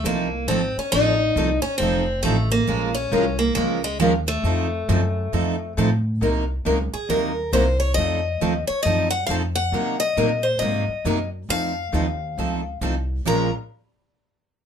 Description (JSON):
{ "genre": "acoustic string swing (jazz manouche)", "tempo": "136 BPM", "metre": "4/4", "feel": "swing 64% on 8ths", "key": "unclear", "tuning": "A4 = 439 Hz", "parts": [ { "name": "picked steel-string acoustic guitar", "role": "melody", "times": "0.0-13.5 s", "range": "Ab3 to Bb5", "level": "-23 LUFS", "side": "left 1 dB", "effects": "none" }, { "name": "picked acoustic archtop guitar", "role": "accompaniment", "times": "0.0-13.5 s", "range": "Bb2 to Bb4", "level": "-26 LUFS", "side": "left 3 dB", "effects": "none" }, { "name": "upright bass", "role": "bass", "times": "0.0-13.5 s", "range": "F1 to C3", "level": "-25 LUFS", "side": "equal", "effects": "none" }, { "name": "picked steel-string acoustic guitar", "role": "accompaniment", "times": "0.1-13.5 s", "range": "Bb2 to Bb4", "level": "-25 LUFS", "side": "right 6 dB", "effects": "none" } ], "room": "moderate studio ambience, RT60 0.4 s", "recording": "minimal, uncompressed stereo recording", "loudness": "-20 LUFS", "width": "side -8 dB against mid", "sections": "0.0-6.2 A section; 6.2-13.3 B section; 13.3-14.7 C section", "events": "none", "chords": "0.0 F7; 2.7 Bbm7; 4.4 F7b9; 6.2 Cm7b5; 8.0 F7b9; 9.7 Cm7b5; 11.5 F7; 13.3 Bbm7", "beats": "0.05 0.49 | 0.93 1.37 1.81 2.25 | 2.69 3.13 3.57 4.01 | 4.45 4.89 5.33 5.77 | 6.21 6.65 7.09 7.53 | 7.97 8.41 8.85 9.29 | 9.73 10.17 10.62 11.06 | 11.50 11.94 12.38 12.82 | 13.26" }